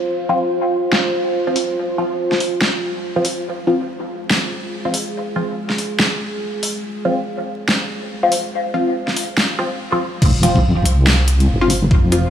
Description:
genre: deep dubstep.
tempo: 142 BPM.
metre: 4/4.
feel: swing 59% on 16ths, half-time.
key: F minor.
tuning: A4 = 441 Hz.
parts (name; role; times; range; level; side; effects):
deep dark ambient pad; sustained chords; 0.0-9.8 s; F4 to C5; -23 LUFS; right 2 dB; chorus, built-in reverb.
filtered dub chord stab; stabs; 0.3-12.3 s; F3 to F4; -21 LUFS; left 1 dB; phaser, dub echo.
dubstep drum kit; drums; 0.9-12.2 s; crash cymbal, hi-hat, snare drum; -21 LUFS; equal; overdrive, low-pass filter on hats, low-pass filter on snare, low-pass filter on cymbals.
deep soft wobble bass; bass; 10.2-12.3 s; F1 to C2; -15 LUFS; equal; chorus.
electronic kick drum; drums; 10.2-12.0 s; none; -14 LUFS; equal; overdrive.
room: moderate huge ambient reverb, RT60 7.2 s.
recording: vinyl crackle, studio reverb.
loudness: -16 LUFS.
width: side -9 dB against mid.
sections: 0.0-10.2 A section; 10.2-12.3 B section.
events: filter sweep on ambient pad 0.0-10.2; break 9.8-10.2; drop 10.2-12.3.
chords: 0.0 F5.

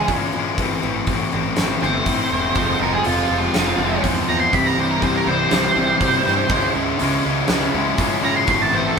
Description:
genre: quiet-loud alternative rock.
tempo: 122 BPM.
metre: 4/4.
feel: straight.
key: unclear.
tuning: A4 = 440 Hz.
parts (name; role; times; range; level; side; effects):
octave-fuzz lead guitar; melody; 0.0-9.0 s; F4 to C6; -20 LUFS; right 2 dB; distortion.
picked steel-string acoustic guitar; arpeggios; 0.0-2.6 s; A2 to Db4; -30 LUFS; right 4 dB; none.
thick fuzz guitar; riff; 0.0-9.0 s; A2 to F4; -21 LUFS; left 5 dB; distortion.
fuzz picked electric bass; bass; 0.1-8.9 s; E1 to C3; -26 LUFS; equal; overdrive.
huge arena drum kit; drums; 0.1-8.6 s; hi-hat, kick drum, snare drum; -25 LUFS; equal; none.
fuzz guitar; riff; 2.5-9.0 s; A2 to F4; -24 LUFS; right 7 dB; distortion.
room: moderate stone room reverb, RT60 1.2 s.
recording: band playing live in one room.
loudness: -16 LUFS.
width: side -5 dB against mid.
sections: 0.0-9.0 A section.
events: half time 0.0-9.0; lead electric guitar solo 0.0-9.0.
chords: 0.0 Dbm; 0.6 Am; 2.6 Fm; 4.5 C; 6.5 Dbm; 8.5 Am.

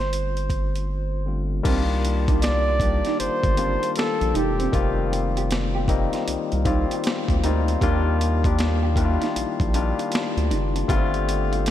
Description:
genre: R&B, neo-soul.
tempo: 78 BPM.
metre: 4/4.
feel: swing 64% on 16ths.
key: C dorian.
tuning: A4 = 439 Hz.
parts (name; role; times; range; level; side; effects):
warm flugelhorn; melody; 0.0-5.1 s; G4 to D5; -27 LUFS; equal; analog delay.
barky tine electric piano; accompaniment; 0.0-11.7 s; D3 to G4; -26 LUFS; left 6 dB; overdrive.
round analog bass; bass; 0.0-11.7 s; E1 to Eb2; -24 LUFS; equal; none.
boom bap sampler-style drum kit; drums; 0.0-11.7 s; crash cymbal, hi-hat, kick drum, snare drum; -26 LUFS; equal; none.
electric guitar through a small old amp; second line; 1.7-11.6 s; C4 to G4; -32 LUFS; right 6 dB; lush chorus.
room: light reverb, digital ambience.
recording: none.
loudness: -20 LUFS.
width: side -11 dB against mid.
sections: 0.0-1.7 A section; 1.7-11.7 B section.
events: drums muted 0.9-1.7.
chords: 0.0 G9sus4; 1.7 Cm11; 4.7 F9sus4; 7.8 Ebmaj9; 10.9 G9sus4.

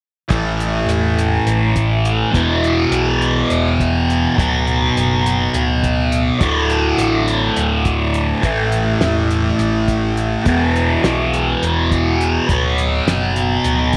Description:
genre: psychedelic rock.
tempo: 207 BPM (eighths).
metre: 7/8.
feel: straight.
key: unclear.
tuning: A4 = 440 Hz.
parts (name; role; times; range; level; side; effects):
fuzz guitar; riff; 0.3-14.0 s; D2 to B3; -18 LUFS; equal; distortion, phaser.
picked electric bass; bass; 0.3-14.0 s; D1 to B1; -23 LUFS; equal; none.
cloth-damped thuddy drum kit; drums; 0.3-14.0 s; hi-hat, kick drum, snare drum; -24 LUFS; equal; none.
room: light reverb, small room reverb.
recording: none.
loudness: -17 LUFS.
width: mono.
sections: 0.3-14.0 A section.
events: none.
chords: 0.3 A5; 2.3 E5; 4.4 Bm/D; 6.4 D5; 8.4 A5; 10.5 E5; 12.5 Bm/D.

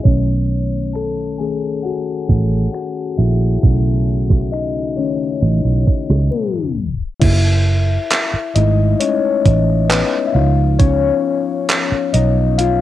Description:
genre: contemporary R&B.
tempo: 67 BPM.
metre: 4/4.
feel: straight.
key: F# dorian.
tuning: A4 = 440 Hz.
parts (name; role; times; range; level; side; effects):
muted felt-like synth keys; accompaniment; 0.0-12.8 s; C#3 to A5; -19 LUFS; left 6 dB; chorus, cassette tape.
vintage muted fingered electric bass; bass; 0.1-12.8 s; F#1 to C#2; -15 LUFS; right 2 dB; none.
gated 80s digital drum machine; drums; 0.1-12.8 s; crash cymbal, finger snaps, handclaps, hi-hat, kick drum, rim click; -16 LUFS; right 2 dB; gated reverb, overdrive, cassette tape.
room: digital ambience.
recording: home recording on cassette, low-pass filter, tape stop.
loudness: -14 LUFS.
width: side -13 dB against mid.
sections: 0.0-7.2 A section; 7.2-12.8 B section.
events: synth keys solo 0.0-7.2, 7.2-12.8; filter sweep 0.0-7.2; break 6.3-7.2; tape stop 6.3-7.2.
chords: 0.1 B9; 7.2 F#m7; 10.3 C#9.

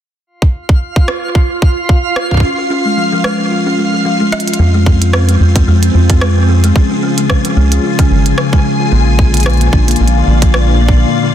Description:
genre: IDM.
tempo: 111 BPM.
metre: 4/4.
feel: swing 56% on 16ths.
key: F minor.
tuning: A4 = 440 Hz.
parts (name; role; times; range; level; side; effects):
twinkling granular texture; texture; 0.8-4.6 s; F4 to F5; -19 LUFS; right 3 dB; built-in reverb.
electronic kick drum; drums; 0.4-11.0 s; none; -10 LUFS; equal; small room ambience.
glitchy drum kit; drums; 1.1-10.7 s; hi-hat, rim click; -20 LUFS; right 2 dB; small room ambience, digital delay.
buzzing kalimba; arpeggios; 2.4-11.3 s; D3 to F4; -15 LUFS; left 2 dB; vintage 12-bit sampler grit, ping-pong delay.
glassy FM pad; sustained chords; 4.6-11.3 s; Bb2 to A5; -17 LUFS; left 2 dB; ensemble chorus, built-in reverb.
rubbery square bass; bass; 4.6-11.0 s; Ab1 to F2; -10 LUFS; equal; none.
room: digital ambience.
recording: dense, heavily limited modern master.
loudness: -9 LUFS.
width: side -10 dB against mid.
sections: 0.3-4.6 A section; 4.6-11.3 B section.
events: kick drops out 2.4-4.6; drum fill 4.3.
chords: 0.3 N.C.; 2.4 Db; 4.6 Fm; 6.8 Db; 8.9 Bb.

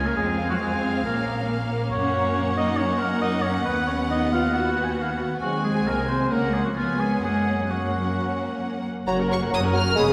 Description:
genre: quick classical-period movement for symphony orchestra.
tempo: 136 BPM.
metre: 4/4.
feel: rubato.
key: F# major.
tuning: A4 = 440 Hz.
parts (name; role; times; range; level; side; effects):
rich chamber violin section; melody; 0.0-10.1 s; F5 to E#6; -34 LUFS; equal; none.
warm chamber violin section; second line; 0.0-10.1 s; Ab3 to F#5; -35 LUFS; equal; none.
warm oboe; second line; 0.0-10.1 s; E#4 to G#5; -30 LUFS; equal; none.
rich chamber viola section; accompaniment; 0.0-10.1 s; G#3 to A#4; -31 LUFS; equal; none.
rich chamber cello section; bass; 0.0-10.1 s; E#2 to F#4; -31 LUFS; equal; none.
rich chamber double bass section; bass; 0.0-10.1 s; E#1 to F#2; -31 LUFS; equal; none.
mellow hollow silver concert flute; second line; 9.1-10.1 s; A#5 to B5; -35 LUFS; equal; none.
mellow bassoon; accompaniment; 9.1-10.1 s; F#3 to G#3; -29 LUFS; equal; none.
mellow French horn section; sustained chords; 10.0-10.1 s; G#4; -24 LUFS; equal; none.
room: wet church reverb, RT60 2.7 s.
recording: none.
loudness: -24 LUFS.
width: mono.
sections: 0.0-9.1 A section; 9.1-10.1 B section.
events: none.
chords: 0.2 Fm; 1.1 Bbm; 1.9 F#; 3.7 B/D#; 5.4 G#7/D#; 6.3 F#/C#; 6.8 C#7; 7.2 F#.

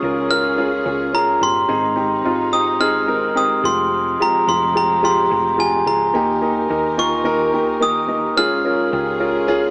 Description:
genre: pop.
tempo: 108 BPM.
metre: 4/4.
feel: straight.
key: Ab major.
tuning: A4 = 440 Hz.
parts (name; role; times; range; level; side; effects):
clear upright piano; accompaniment; 0.0-9.7 s; Ab2 to Bb4; -22 LUFS; equal; none.
warm studio string section; sustained chords; 0.0-9.7 s; Db3 to Bb4; -29 LUFS; equal; none.
hollow-body short-scale fingered electric bass; bass; 0.0-9.7 s; F1 to Eb2; -37 LUFS; equal; none.
glockenspiel with brass mallets; melody; 0.3-9.7 s; Ab5 to F6; -20 LUFS; equal; none.
room: moderate plate reverb, RT60 3.2 s.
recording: small speaker sound.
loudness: -18 LUFS.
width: mono.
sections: 0.0-9.7 A section.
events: none.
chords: 0.0 Db; 1.7 Ab; 3.6 Fmadd9; 6.1 Eb; 8.4 Db.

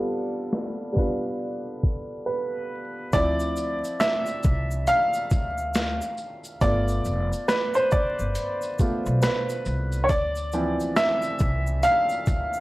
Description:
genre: lo-fi hip hop.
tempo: 69 BPM.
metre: 4/4.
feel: swing 62% on 16ths.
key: D dorian.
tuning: A4 = 440 Hz.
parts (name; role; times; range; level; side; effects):
warm upright piano; accompaniment; 0.0-12.6 s; E3 to F5; -24 LUFS; equal; cassette tape.
boom bap sampler-style drum kit; drums; 0.5-12.5 s; hi-hat, kick drum, shaker, snare drum; -26 LUFS; equal; none.
upright bass; bass; 3.1-12.6 s; F1 to D2; -27 LUFS; equal; transformer saturation.
tube shaker; percussion; 3.1-12.6 s; none; -45 LUFS; left 2 dB; none.
room: little or no reverb.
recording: dry, gritty hardware recording, vinyl crackle, low-pass filter.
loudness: -22 LUFS.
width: side -18 dB against mid.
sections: 0.0-3.1 A section; 3.1-12.6 B section.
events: filter sweep 0.0-3.1; drums muted 2.3-3.1; upright piano solo 3.1-12.6.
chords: 0.0 G7; 3.1 Dm9; 6.6 G7; 10.1 Dm9.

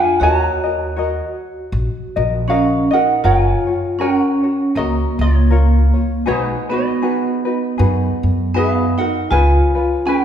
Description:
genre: Hawaiian.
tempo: 79 BPM.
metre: 4/4.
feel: swing 57% on 8ths.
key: Eb minor, F# major from 3.2 s.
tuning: A4 = 440 Hz.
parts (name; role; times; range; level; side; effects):
ukulele; melody; 0.0-10.2 s; D#4 to Bb5; -20 LUFS; right 2 dB; none.
vibraphone with medium hard mallets; second line; 0.0-10.2 s; G#3 to Gb4; -20 LUFS; right 1 dB; none.
tenor ukulele; accompaniment; 0.0-10.2 s; C#4 to F5; -22 LUFS; left 4 dB; none.
upright bass; bass; 0.2-9.6 s; F#1 to F#2; -17 LUFS; equal; none.
room: wet recital hall reverb, RT60 1.7 s.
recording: recorded in a church or concert hall.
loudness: -14 LUFS.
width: side -9 dB against mid.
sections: 0.0-3.2 A section; 3.2-10.2 B section.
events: none.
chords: 0.2 Ebm7; 3.2 F#maj7; 6.3 B6; 9.3 C#7.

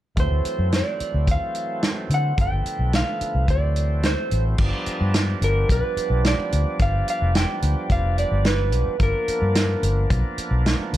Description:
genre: straight-eighth soul blues.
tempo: 109 BPM.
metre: 4/4.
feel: straight.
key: G mixolydian from 4.6 s.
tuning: A4 = 436 Hz.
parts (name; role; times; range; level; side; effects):
electric guitar through a small old amp; melody; 0.2-10.1 s; A#4 to G5; -26 LUFS; right 1 dB; none.
percussive tonewheel organ; accompaniment; 0.2-11.0 s; D3 to D4; -30 LUFS; right 2 dB; overdrive, slow rotary speaker.
vintage muted fingered electric bass; bass; 0.2-11.0 s; F1 to D3; -21 LUFS; equal; none.
warm soul drum kit; drums; 0.2-11.0 s; crash cymbal, hi-hat, kick drum, snare drum; -24 LUFS; equal; none.
room: little or no reverb.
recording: none.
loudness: -19 LUFS.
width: side -13 dB against mid.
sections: 0.2-4.6 A section; 4.6-11.0 B section.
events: none.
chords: 0.2 D7; 2.4 G7; 3.5 D7; 4.6 G7#9.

